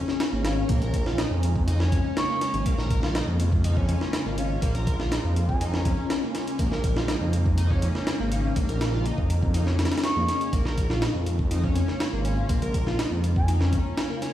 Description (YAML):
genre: breakbeat, breaks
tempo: 122 BPM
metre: 4/4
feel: straight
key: Bb minor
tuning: A4 = 435 Hz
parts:
  - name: phased analog pad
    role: sustained chords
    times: 0.0-14.3 s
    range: Db3 to F4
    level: -32 LUFS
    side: equal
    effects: phaser, chorus, vintage 12-bit sampler grit, sidechain pumping
  - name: overdriven synth lead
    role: riff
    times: 0.0-14.3 s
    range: Bb3 to Bb4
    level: -31 LUFS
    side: left 1 dB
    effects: ensemble chorus, ping-pong delay
  - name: breakbeat sampler-style drum kit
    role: drums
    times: 0.1-14.3 s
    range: hi-hat, kick drum, snare drum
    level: -27 LUFS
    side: equal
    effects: none
  - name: detuned saw bass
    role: bass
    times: 0.3-13.8 s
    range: Ab1 to F2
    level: -25 LUFS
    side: equal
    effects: none
  - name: mellow hollow baroque flute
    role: melody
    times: 0.5-14.0 s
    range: F5 to Db6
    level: -33 LUFS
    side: equal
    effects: telephone sound, ping-pong delay
room: light reverb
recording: played on a big sound system in a bare room, stone room reverb, vinyl crackle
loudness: -22 LUFS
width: side -12 dB against mid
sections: 0.0-14.3 A section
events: none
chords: 0.0 Bbm7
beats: 0.20 | 0.69 1.19 1.68 2.17 | 2.66 3.15 3.65 4.14 | 4.63 5.12 5.61 6.11 | 6.60 7.09 7.58 8.07 | 8.56 9.05 9.55 10.04 | 10.53 11.02 11.51 12.01 | 12.50 12.99 13.48 13.97